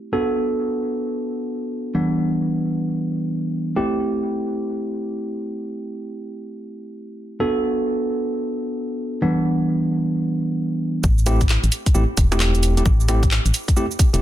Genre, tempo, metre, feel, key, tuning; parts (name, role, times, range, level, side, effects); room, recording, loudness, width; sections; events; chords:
UK garage, two-step garage; 132 BPM; 4/4; swing 64% on 16ths; A dorian; A4 = 437 Hz
tine electric piano; stabs; 0.0-14.2 s; E3 to A4; -22 LUFS; right 1 dB; low-pass filter, dub echo
organ-like FM bass; bass; 11.0-14.2 s; E1 to A1; -18 LUFS; equal
electronic kick drum; drums; 11.0-14.1 s; -17 LUFS; equal
garage drum kit; drums; 11.0-14.2 s; bongos, handclaps, hi-hat, rim click, shaker; -25 LUFS; right 1 dB
light reverb, digital ambience; dense, heavily limited modern master; -19 LUFS; side -13 dB against mid
0.0-11.0 A section; 11.0-14.2 B section
drop 11.0-14.2
0.1 Bm7; 1.9 Em7; 3.8 Am7; 7.4 Bm7; 9.2 Em7; 11.0 Am7